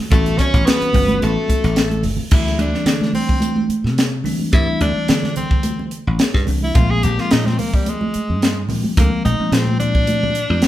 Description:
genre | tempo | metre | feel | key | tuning
electric jazz fusion | 108 BPM | 4/4 | swing 54% on 16ths | D minor | A4 = 438 Hz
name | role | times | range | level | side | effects
dry thumbed slap bass | bass | 0.0-10.7 s | G1 to D3 | -21 LUFS | equal | none
edgy tenor saxophone | melody | 0.1-10.7 s | G3 to Ab4 | -22 LUFS | left 1 dB | slapback echo
overdriven electric guitar | second line | 0.1-2.0 s | A4 to C#5 | -25 LUFS | equal | none
bell-like tine electric piano | accompaniment | 0.1-10.3 s | Eb3 to F#4 | -24 LUFS | left 2 dB | phaser
crisp fusion drum kit | drums | 0.1-10.7 s | crash cymbal, hi-hat, kick drum, snare drum | -18 LUFS | equal | none
congas | percussion | 0.1-10.7 s | none | -24 LUFS | right 2 dB | none
room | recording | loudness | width
light reverb | band playing live in one room | -15 LUFS | side -13 dB against mid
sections
0.0-2.3 A section; 2.3-10.7 B section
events
drum fill 1.9-2.3, 10.5; tenor saxophone solo 2.3-10.7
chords
0.1 A13; 2.3 D9sus4; 6.8 Bb9sus4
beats
| 0.12 0.67 1.22 1.77 | 2.33 2.88 3.43 3.98 | 4.54 5.09 5.64 6.20 | 6.75 7.31 7.86 8.41 | 8.97 9.53 10.08 10.63

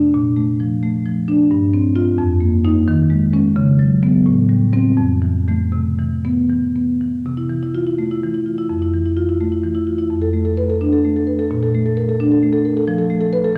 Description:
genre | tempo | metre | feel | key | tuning
classical, contemporary piece for solo marimba | 78-90 BPM (dotted quarters) | 6/8 | rubato | C major | A4 = 441 Hz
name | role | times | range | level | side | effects
marimba with soft mallets | solo | 0.0-13.6 s | F2 to B4 | -17 LUFS | equal | none
room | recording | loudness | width
wet recital hall reverb, RT60 1.4 s | none | -17 LUFS | mono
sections
0.0-7.3 A section; 7.3-13.6 A section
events
none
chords
0.1 Bbmaj7; 1.5 G7sus4; 2.2 F7sus4; 2.9 Eb7sus4; 3.6 Db7sus4; 4.3 Am7; 5.0 Fmaj7; 5.7 Cmaj7; 7.3 C6; 8.7 Fmaj7; 10.1 F6; 11.5 Bbmaj7; 12.9 F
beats
| 0.14 0.83 | 1.51 2.19 | 2.88 3.56 | 4.26 4.98 | 5.73 6.50 | 7.26 7.99 | 8.70 9.41 | 10.12 10.83 | 11.52 12.21 | 12.88 13.56

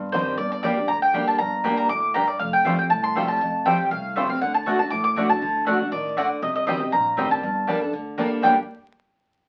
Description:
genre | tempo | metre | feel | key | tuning
bluegrass | 239 BPM | 4/4 | swing 54% on 8ths | G minor | A4 = 440 Hz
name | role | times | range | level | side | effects
mandolin | melody | 0.0-8.6 s | C5 to D6 | -24 LUFS | equal | none
picked steel-string acoustic guitar | accompaniment | 0.0-8.5 s | F2 to A4 | -29 LUFS | equal | none
upright bass | bass | 0.0-8.6 s | F1 to D2 | -39 LUFS | equal | none
bluegrass banjo | melody | 0.1-8.6 s | G3 to G4 | -33 LUFS | equal | none
mandolin | stabs | 0.6-8.5 s | A3 to A5 | -30 LUFS | equal | none
room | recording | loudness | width
wet studio reverb, RT60 0.5 s | very old 78 rpm record, vinyl crackle | -22 LUFS | mono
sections
0.0-8.4 A section; 8.4-9.4 B section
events
none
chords
0.4 Gm; 2.4 Fadd9; 4.4 D; 6.4 Cm; 7.4 Gmadd9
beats
0.14 | 0.39 0.64 0.89 1.15 | 1.40 1.65 1.90 2.15 | 2.40 2.65 2.90 3.16 | 3.41 3.66 3.91 4.16 | 4.41 4.67 4.92 5.17 | 5.42 5.67 5.92 6.17 | 6.42 6.68 6.93 7.18 | 7.43 7.68 7.93 8.18 | 8.44

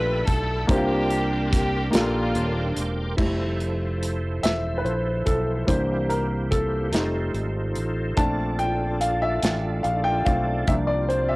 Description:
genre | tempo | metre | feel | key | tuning
slow gospel | 48 BPM (dotted quarters) | 6/8 | straight | F major | A4 = 440 Hz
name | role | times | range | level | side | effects
warm chamber string section | melody | 0.0-3.2 s | Bb3 to B4 | -27 LUFS | equal | cassette tape
warm upright piano | accompaniment | 0.0-11.4 s | G2 to B5 | -25 LUFS | left 1 dB | cassette tape
bright tonewheel organ | sustained chords | 0.0-11.4 s | F3 to E6 | -31 LUFS | right 1 dB | fast rotary speaker, chorus vibrato, cassette tape
fingered electric bass | bass | 0.0-11.4 s | Eb1 to C2 | -27 LUFS | equal | transformer saturation
modern studio drum kit | drums | 0.3-11.3 s | crash cymbal, hi-hat, kick drum, snare drum | -25 LUFS | equal | none
room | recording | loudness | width
little or no reverb | home recording on cassette | -21 LUFS | side -23 dB against mid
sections
0.0-3.2 A section; 3.2-11.4 B section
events
upright piano solo 3.2-11.4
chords
0.0 G13; 0.7 C9sus4; 3.2 Fmaj7; 5.7 C7; 6.9 F7; 8.2 Bbmaj7; 10.7 C7sus4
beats
| 0.69 1.94 | 3.19 4.44 | 5.69 6.94 | 8.19 9.44 | 10.69

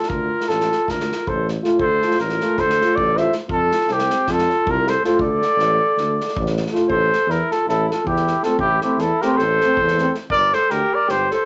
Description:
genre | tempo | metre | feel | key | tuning
balkan folk, Balkan brass band | 318 BPM (eighths) | 9/8 | straight | D minor | A4 = 440 Hz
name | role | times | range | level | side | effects
mellow trumpet | melody | 0.0-11.5 s | G4 to E5 | -22 LUFS | equal | none
warm alto saxophone | second line | 0.0-11.5 s | C4 to C5 | -26 LUFS | equal | none
unplugged drum kit | percussion | 0.0-11.3 s | kick drum, snare drum | -33 LUFS | equal | none
mellow tuba | bass | 0.1-11.3 s | G1 to F2 | -28 LUFS | equal | none
mellow French horn | accompaniment | 1.6-10.1 s | C4 to F4 | -24 LUFS | equal | none
warm trombone | accompaniment | 1.6-10.1 s | A3 | -31 LUFS | equal | none
room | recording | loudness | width
wet studio reverb, RT60 0.5 s | nothing above 8.0 kHz | -19 LUFS | mono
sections
0.0-6.9 A section; 6.9-11.5 B section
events
none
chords
0.1 Dm; 3.5 F; 5.2 D5; 6.9 Am; 10.3 Gm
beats
| 0.10 0.29 0.47 0.67 0.85 1.04 1.23 1.42 1.61 | 1.80 1.99 2.18 2.37 2.56 2.75 2.93 3.12 3.31 | 3.50 3.69 3.88 4.07 4.26 4.44 4.63 4.82 5.01 | 5.20 5.39 5.58 5.76 5.95 6.14 6.33 6.52 6.71 | 6.89 7.08 7.27 7.46 7.65 7.84 8.03 8.22 8.40 | 8.59 8.78 8.97 9.16 9.35 9.54 9.73 9.92 10.11 | 10.29 10.48 10.67 10.86 11.05 11.24 11.43

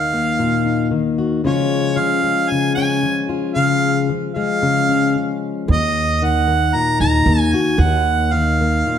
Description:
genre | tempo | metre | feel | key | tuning
acoustic folk duo or small band | 113 BPM | 4/4 | straight | Eb minor | A4 = 439 Hz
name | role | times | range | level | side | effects
warm harmonica | melody | 0.0-9.0 s | Db5 to Bb5 | -19 LUFS | right 3 dB | none
fingerpicked plugged-in steel-string acoustic guitar | accompaniment | 0.0-9.0 s | Eb2 to Gb4 | -18 LUFS | left 4 dB | none
upright bass | bass | 5.7-8.8 s | Eb2 | -18 LUFS | right 1 dB | none
room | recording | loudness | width
moderate recital hall reverb, RT60 1.4 s | none | -15 LUFS | side -9 dB against mid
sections
0.0-9.0 A section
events
none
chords
0.0 Ebmadd9; 1.4 Db; 5.7 Ebmadd9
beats
0.37 0.90 | 1.43 1.96 2.49 3.02 | 3.56 4.08 4.62 5.15 | 5.68 6.21 6.74 7.27 | 7.80 8.33 8.86

